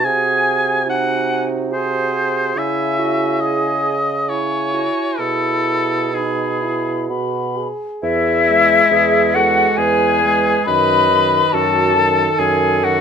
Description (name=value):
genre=classical, slow romantic movement for wind quintet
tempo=63-74 BPM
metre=3/4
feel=rubato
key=E major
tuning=A4 = 443 Hz
part: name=hollow concert flute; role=melody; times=0.0-13.0 s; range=E5 to B5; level=-18 LUFS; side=left 6 dB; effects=none
part: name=clear oboe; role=second line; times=0.0-13.0 s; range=E4 to G#5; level=-20 LUFS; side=equal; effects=none
part: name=warm French horn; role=accompaniment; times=0.0-13.0 s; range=D#3 to G#4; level=-25 LUFS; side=right 2 dB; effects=none
part: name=warm clarinet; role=accompaniment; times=0.0-13.0 s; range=D#4 to D#5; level=-24 LUFS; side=right 9 dB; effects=none
part: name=dark bassoon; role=bass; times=0.0-13.0 s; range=E2 to C#3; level=-21 LUFS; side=right 3 dB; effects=none
room=light reverb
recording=minimal, uncompressed stereo recording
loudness=-14 LUFS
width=side -7 dB against mid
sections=0.0-8.0 A section; 8.0-13.0 B section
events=none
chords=0.0 G#7/B#; 2.6 C#m; 5.2 E/B; 7.1 B5; 8.0 E; 10.7 B7/F#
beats=| 0.05 0.88 1.72 | 2.57 3.41 4.28 | 5.20 6.15 7.09 | 8.03 8.91 9.78 | 10.66 11.53 12.38